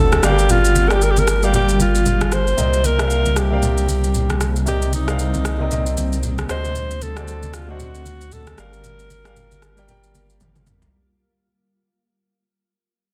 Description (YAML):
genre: amapiano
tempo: 115 BPM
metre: 4/4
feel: swing 58% on 16ths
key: unclear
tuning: A4 = 442 Hz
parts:
  - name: breathy alto saxophone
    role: melody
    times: 0.0-10.4 s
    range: Eb4 to C5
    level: -24 LUFS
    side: equal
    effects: tape echo
  - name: warm grand piano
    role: accompaniment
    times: 0.0-11.0 s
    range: C3 to G5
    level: -28 LUFS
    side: equal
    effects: none
  - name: granular cloud pad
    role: sustained chords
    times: 0.0-10.9 s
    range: C3 to F#4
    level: -30 LUFS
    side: equal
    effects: built-in reverb
  - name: saturated sub bass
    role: bass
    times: 0.0-10.9 s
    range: G1 to D2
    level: -23 LUFS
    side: equal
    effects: none
  - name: deep house drum kit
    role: drums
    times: 0.1-10.9 s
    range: rim click, shaker, toms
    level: -26 LUFS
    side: equal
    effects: overdrive
  - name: congas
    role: percussion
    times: 0.1-10.7 s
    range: none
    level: -30 LUFS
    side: equal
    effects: none
room: light reverb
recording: dense, heavily limited modern master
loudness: -18 LUFS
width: mono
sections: 0.0-10.9 A section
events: fade-out 0.0-10.9; drum fill 10.4-10.9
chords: 0.2 Gm7; 2.6 Cm7; 6.5 D7b9; 8.6 Gm7